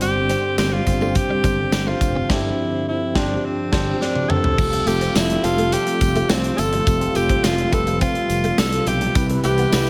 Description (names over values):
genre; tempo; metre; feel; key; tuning
1980s-style pop; 105 BPM; 4/4; straight; unclear; A4 = 439 Hz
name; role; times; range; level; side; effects
bright alto saxophone; melody; 0.0-9.9 s; C4 to A4; -25 LUFS; equal; none
tine electric piano; accompaniment; 0.0-9.9 s; G2 to C5; -27 LUFS; equal; none
brassy analog pad; sustained chords; 0.0-9.9 s; C3 to B4; -29 LUFS; equal; chorus
direct-recorded clean electric guitar; riff; 0.0-9.8 s; G3 to C4; -31 LUFS; equal; none
sustaining fretless electric bass; bass; 0.0-9.9 s; F1 to C2; -27 LUFS; equal; none
big rock drum kit; drums; 0.0-9.9 s; crash cymbal, hi-hat, kick drum, snare drum, tambourine, toms; -25 LUFS; equal; gated reverb
tambourine; percussion; 0.0-9.9 s; none; -40 LUFS; equal; none
room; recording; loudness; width
light reverb, small room ambience; none; -19 LUFS; mono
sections
0.0-4.6 A section; 4.6-9.9 B section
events
band accent 2.3-4.6; drum fill 4.0-4.6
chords
0.0 Gsus4; 4.6 Fadd9; 9.2 Cmaj7